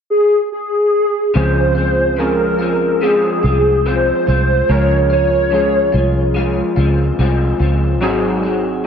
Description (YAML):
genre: indie pop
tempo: 72 BPM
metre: 4/4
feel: straight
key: Db major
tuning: A4 = 440 Hz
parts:
  - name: hollow clarinet-like synth lead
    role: melody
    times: 0.1-6.7 s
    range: Ab4 to Db5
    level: -15 LUFS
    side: equal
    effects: ensemble chorus, tape echo
  - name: electric guitar through a small old amp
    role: accompaniment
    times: 1.3-8.9 s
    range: Ab2 to Gb4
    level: -20 LUFS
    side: left 4 dB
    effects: analog chorus, warbly pitch drift
  - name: warbly lo-fi synth keys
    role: accompaniment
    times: 1.4-8.9 s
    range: F3 to Bb4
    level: -21 LUFS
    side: right 3 dB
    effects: chorus, cassette tape
  - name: vintage muted fingered electric bass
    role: bass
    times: 1.4-8.9 s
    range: Ab1 to Db2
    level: -17 LUFS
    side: equal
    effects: none
room: light reverb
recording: none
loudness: -13 LUFS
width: side -7 dB against mid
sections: 0.0-1.4 A section; 1.4-8.9 B section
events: none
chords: 0.0 N.C.; 1.4 Dbmaj7; 8.0 Ab7